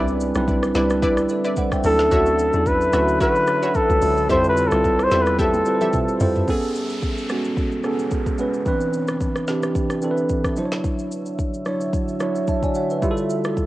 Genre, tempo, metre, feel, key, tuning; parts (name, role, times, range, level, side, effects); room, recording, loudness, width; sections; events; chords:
amapiano; 110 BPM; 4/4; swing 55% on 16ths; A major; A4 = 440 Hz
bell-like tine electric piano; accompaniment; 0.0-13.7 s; E3 to A5; -22 LUFS; right 2 dB; wide subtle chorus, cassette tape
deep dark ambient pad; sustained chords; 0.0-13.7 s; C3 to E5; -31 LUFS; left 1 dB; chorus, built-in reverb, sidechain pumping, cassette tape
analog pluck; stabs; 0.0-5.9 s; E4 to E5; -28 LUFS; left 1 dB; chorus, cassette tape, tape echo
hollow log drum bass; bass; 0.0-6.5 s; B1 to F2; -25 LUFS; equal
afro-pop drum kit; drums; 0.1-13.7 s; hi-hat, kick drum, rim click, shaker, snare drum, toms; -26 LUFS; equal; cassette tape
trumpet with bucket mute; melody; 1.9-6.2 s; A4 to C5; -20 LUFS; equal; cassette tape, tape echo
downlifter; sound effects; 6.5-10.8 s; -38 LUFS; equal
moderate spring reverb, RT60 1.9 s; home recording on cassette; -18 LUFS; side -16 dB against mid
0.0-6.5 A section; 6.5-13.7 B section
drop 0.0-6.5; drum fill 5.4-6.5
0.0 Cmaj9; 1.8 Dmaj9; 4.3 Fmaj9; 6.5 Amaj9; 8.7 Cmaj9; 10.6 Dmaj9; 13.0 Fmaj9